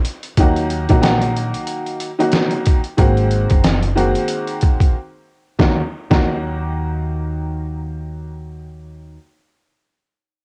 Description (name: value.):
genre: hip hop, boom-bap hip-hop.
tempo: 92 BPM.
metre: 4/4.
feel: swing 58% on 16ths.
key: Eb dorian.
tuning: A4 = 440 Hz.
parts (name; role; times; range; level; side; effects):
trip hop sampler-style drum kit; drums; 0.0-6.3 s; hi-hat, kick drum, snare drum; -18 LUFS; equal; vintage 12-bit sampler grit.
bright upright piano; accompaniment; 0.4-9.2 s; Eb3 to Gb4; -22 LUFS; equal; high-pass filter, low-pass filter, cassette tape.
upright bass; bass; 0.4-9.2 s; Gb1 to Eb2; -24 LUFS; equal; none.
room: light reverb, studio ambience.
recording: home recording on cassette.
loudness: -18 LUFS.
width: mono.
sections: 0.4-5.6 A section; 5.6-8.2 B section.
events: break 4.9-5.6.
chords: 0.4 Ebm; 3.0 Ab7; 5.6 Ebm.